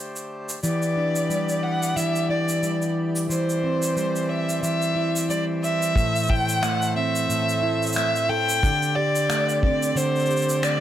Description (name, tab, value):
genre	folktronica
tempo	90 BPM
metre	4/4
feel	swing 56% on 16ths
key	A minor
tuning	A4 = 441 Hz
part	accordion	sustained chords	0.0-10.8 s	A2 to E5	-32 LUFS	left 2 dB	none
part	electronic shaker and finger snaps	drums	0.2-10.8 s	none	-30 LUFS	equal	overdrive
part	rich violin	melody	0.6-10.8 s	C5 to G5	-24 LUFS	equal	tape echo
part	nylon-string guitar	arpeggios	0.6-10.8 s	A2 to A4	-24 LUFS	right 1 dB	none
part	kick drum	drums	6.0-9.8 s	none	-22 LUFS	equal	none
room	moderate small room reverb, RT60 0.5 s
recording	none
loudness	-20 LUFS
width	side -11 dB against mid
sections	0.0-6.0 A section; 6.0-10.8 B section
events	none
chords	0.0 D7sus4; 0.6 Em7; 3.3 C/E; 6.0 Am; 8.6 D7sus4